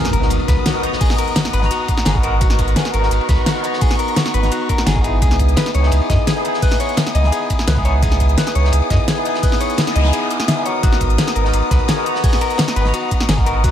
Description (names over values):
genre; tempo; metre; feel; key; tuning
liquid drum and bass; 171 BPM; 4/4; straight; G# minor; A4 = 439 Hz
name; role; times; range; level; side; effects
barky tine electric piano; accompaniment; 0.0-13.7 s; B3 to A#5; -21 LUFS; equal; phaser, tape echo
dark symphonic string section; sustained chords; 0.0-13.7 s; F#5 to D#6; -27 LUFS; left 5 dB; none
clean electric guitar; arpeggios; 0.0-13.7 s; F#4 to E5; -25 LUFS; left 5 dB; ping-pong delay
pop drum kit; drums; 0.0-13.7 s; hi-hat, snare drum; -21 LUFS; equal; none
impact and noise sweep; sound effects; 0.0-1.0, 9.7-10.8 s; none; -26 LUFS; equal; none
warm sub bass; bass; 0.1-13.7 s; G#1 to F#2; -16 LUFS; equal; tube saturation
crunchy breakbeat drum kit; drums; 0.1-13.7 s; hi-hat, ride cymbal, snare drum; -29 LUFS; equal; high-pass filter on cymbals, high-pass filter on hats, high-pass filter on snare, high-pass filter on room
electronic kick drum; drums; 0.5-13.7 s; none; -18 LUFS; equal; none
room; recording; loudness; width
little or no reverb; none; -14 LUFS; side -10 dB against mid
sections
0.0-13.7 A section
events
impact 0.0-1.0; noise sweep 9.7-10.8; break 10.1-10.8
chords
0.0 G#m9; 5.2 C#m9; 10.8 G#m9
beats
0.31 0.66 | 1.01 1.36 1.71 2.06 | 2.41 2.76 3.11 3.46 | 3.82 4.17 4.52 4.87 | 5.22 5.57 5.92 6.27 | 6.62 6.97 7.33 7.68 | 8.03 8.38 8.73 9.08 | 9.43 9.78 10.13 10.48 | 10.83 11.18 11.54 11.89 | 12.24 12.59 12.94 13.29 | 13.64